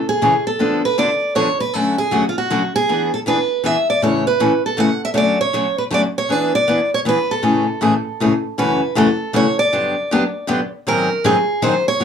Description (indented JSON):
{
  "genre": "jazz",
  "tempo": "158 BPM",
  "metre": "3/4",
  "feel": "swing 63% on 8ths",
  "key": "A major, F# minor from 8.6 s",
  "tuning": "A4 = 440 Hz",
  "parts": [
    { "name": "picked steel-string acoustic guitar", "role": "melody", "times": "0.0-12.0 s", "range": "F4 to F#5", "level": "-18 LUFS", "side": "right 2 dB", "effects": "none" },
    { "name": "picked steel-string acoustic guitar", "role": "accompaniment", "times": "0.2-12.0 s", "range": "F#2 to A4", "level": "-17 LUFS", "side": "left 2 dB", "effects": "none" }
  ],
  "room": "moderate small room ambience, RT60 0.5 s",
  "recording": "small room ambience",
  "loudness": "-15 LUFS",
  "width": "side -7 dB against mid",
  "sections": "0.0-8.6 A section; 8.6-12.0 B section",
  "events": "none",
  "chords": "0.0 Amaj7; 0.6 Dm6; 1.7 Dmaj7; 2.9 E7; 4.0 A; 5.2 Dmaj7; 6.3 E7; 7.4 Amaj7; 8.6 F#m7; 9.7 Gmaj7; 10.9 G#7"
}